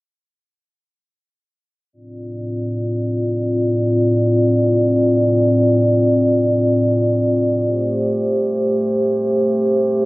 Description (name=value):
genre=trip hop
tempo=free time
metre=none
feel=none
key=unclear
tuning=A4 = 444 Hz
part: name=dark analog pad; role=sustained chords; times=1.9-10.1 s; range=A2 to D5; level=-15 LUFS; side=equal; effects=chorus
room=light reverb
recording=home recording on cassette, low-pass filter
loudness=-14 LUFS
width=side -21 dB against mid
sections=1.9-10.1 A section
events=filter sweep 1.9-10.1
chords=1.9 Dm7/A; 7.6 Am7